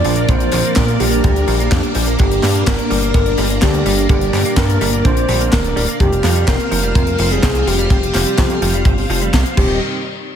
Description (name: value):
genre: italo disco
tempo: 126 BPM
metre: 4/4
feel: straight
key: unclear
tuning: A4 = 440 Hz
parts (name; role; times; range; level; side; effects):
- soft octave-layered synth lead; melody; 0.0-9.8 s; G4 to D5; -20 LUFS; left 1 dB; chorus, digital delay
- string machine, full ensemble; sustained chords; 0.0-9.8 s; F3 to F5; -20 LUFS; equal; ensemble chorus
- direct-recorded clean electric guitar; arpeggios; 0.0-9.8 s; C3 to Bb3; -25 LUFS; right 4 dB; analog chorus, ping-pong delay
- chorused synth bass; bass; 0.0-9.8 s; D1 to Bb2; -18 LUFS; equal; none
- tight funk drum kit; drums; 0.0-9.7 s; crash cymbal, handclaps, hi-hat, snare drum; -21 LUFS; left 2 dB; gated reverb
- kick drum; drums; 0.3-9.7 s; none; -16 LUFS; equal; none
room: small room reverb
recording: none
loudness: -13 LUFS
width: side -9 dB against mid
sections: 0.0-9.8 A section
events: none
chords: 0.0 Bb; 2.2 Gm; 6.0 Fsus2; 9.6 Eb6; 9.8 N.C.